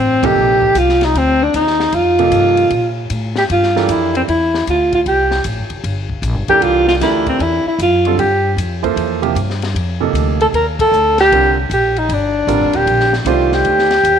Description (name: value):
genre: modal jazz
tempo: 154 BPM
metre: 4/4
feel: swing 65% on 8ths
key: unclear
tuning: A4 = 440 Hz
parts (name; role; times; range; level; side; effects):
- breathy alto saxophone; melody; 0.0-14.2 s; C4 to Bb4; -13 LUFS; equal; none
- upright bass; bass; 0.0-14.2 s; Eb1 to Bb2; -20 LUFS; left 1 dB; none
- warm baby grand piano; accompaniment; 0.2-13.9 s; C3 to C5; -20 LUFS; right 12 dB; none
- compact cocktail drum kit; drums; 0.2-14.2 s; hi-hat, kick drum, ride cymbal, snare drum; -26 LUFS; left 6 dB; none
room: moderate echo chamber reverb, RT60 2.1 s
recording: 1960s-style stereo with parts hard left and right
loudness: -12 LUFS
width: side -8 dB against mid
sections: 0.0-14.2 A section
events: band accent 0.2, 10.7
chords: 0.0 F7sus4; 3.5 G13sus4; 9.7 F13sus4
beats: | 0.36 0.75 1.14 1.53 | 1.93 2.32 2.71 3.10 | 3.49 3.88 4.28 4.67 | 5.06 5.45 5.84 6.23 | 6.62 7.01 7.40 7.79 | 8.19 8.58 8.97 9.36 | 9.75 10.14 10.53 10.92 | 11.31 11.70 12.09 12.48 | 12.87 13.26 13.65 14.04